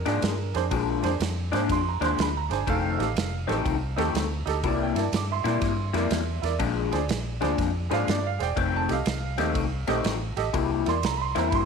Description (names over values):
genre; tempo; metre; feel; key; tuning
electric blues shuffle; 122 BPM; 4/4; swing 66% on 8ths; unclear; A4 = 440 Hz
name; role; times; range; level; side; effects
clear upright piano; accompaniment; 0.0-11.7 s; D4 to D6; -29 LUFS; right 11 dB; none
vintage muted fingered electric bass; bass; 0.0-11.7 s; E1 to Bb2; -29 LUFS; equal; none
electric guitar through a small old amp; riff; 0.1-11.6 s; F2 to E4; -28 LUFS; left 12 dB; phaser
natural country drum kit; drums; 0.1-11.7 s; kick drum, ride cymbal, snare drum; -31 LUFS; right 3 dB; none
room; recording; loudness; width
moderate echo chamber reverb, RT60 1.3 s, studio ambience; 1960s-style stereo with parts hard left and right, lossy compression artefacts; -24 LUFS; side -5 dB against mid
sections
0.0-11.7 A section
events
none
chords
0.0 Bb7; 2.7 F7; 4.6 C7; 6.6 Bb7; 8.6 F7; 10.5 C7